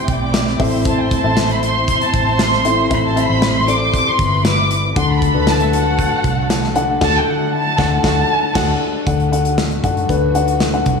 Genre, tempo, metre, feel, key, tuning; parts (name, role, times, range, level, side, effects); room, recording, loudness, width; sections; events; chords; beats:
piano-driven pop; 117 BPM; 4/4; straight; A4 = 440 Hz
warm studio violin section; melody; 0.0-8.8 s; E5 to D6; -19 LUFS; equal
warm studio violin section; second line; 0.0-8.7 s; F#4 to D6; -24 LUFS; equal; slapback echo
dark upright piano; accompaniment; 0.0-11.0 s; A2 to F#5; -19 LUFS; left 4 dB; slapback echo
warm studio string section; sustained chords; 0.0-11.0 s; D3 to F#4; -28 LUFS; right 2 dB
vintage muted fingered electric bass; bass; 0.1-11.0 s; G1 to F#2; -20 LUFS; equal
modern studio drum kit; drums; 0.1-11.0 s; crash cymbal, hi-hat, kick drum, snare drum; -20 LUFS; equal
moderate recital hall reverb, RT60 1.7 s, small room ambience; big arena sound; -13 LUFS; side -5 dB against mid
0.0-9.1 A section; 9.1-11.0 B section
band accent 7.0-9.1
0.0 C; 0.6 Am; 5.0 D
0.34 | 0.85 1.37 1.88 2.40 | 2.91 3.42 3.94 4.45 | 4.96 5.48 5.99 6.50 | 7.01 7.53 8.04 8.55 | 9.07 9.58 10.09 10.61